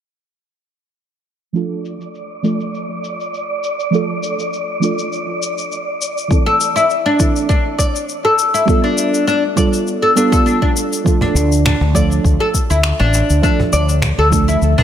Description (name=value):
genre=organic downtempo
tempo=101 BPM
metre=4/4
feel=swing 54% on 16ths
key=D dorian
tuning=A4 = 439 Hz
part: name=deep mellow chord stab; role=accompaniment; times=1.5-14.8 s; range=E3 to A4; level=-20 LUFS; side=right 3 dB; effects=chorus, sidechain pumping, tape echo
part: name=wind-like tuned noise texture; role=texture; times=2.1-11.1 s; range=D5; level=-25 LUFS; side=equal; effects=built-in reverb
part: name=electronic shaker and finger snaps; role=drums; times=1.6-14.7 s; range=none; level=-23 LUFS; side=left 4 dB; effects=low-pass filter on perc, low-pass filter on snare, low-pass filter on room
part: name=electronic kick drum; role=drums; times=6.3-14.5 s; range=none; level=-16 LUFS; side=equal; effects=none
part: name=oud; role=arpeggios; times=6.5-14.8 s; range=D4 to D5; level=-16 LUFS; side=left 2 dB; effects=tape echo
part: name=cajon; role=percussion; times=11.2-14.8 s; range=none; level=-20 LUFS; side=right 1 dB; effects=none
part: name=mellow fretless electric bass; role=bass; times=11.3-14.7 s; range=A1 to D2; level=-15 LUFS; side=equal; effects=tube saturation, sidechain pumping
room=moderate lush hall reverb, RT60 2.0 s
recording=none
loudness=-13 LUFS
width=side -10 dB against mid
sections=1.6-11.1 A section; 11.1-14.8 B section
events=filter sweep on synth stab 1.6-11.1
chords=1.6 Dm; 6.3 Am; 8.7 G7; 11.1 Dm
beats=| 1.55 2.15 2.74 3.33 | 3.93 4.52 5.12 5.71 | 6.30 6.90 7.49 8.09 | 8.68 9.27 9.87 10.46 | 11.06 11.65 12.24 12.84 | 13.43 14.03 14.62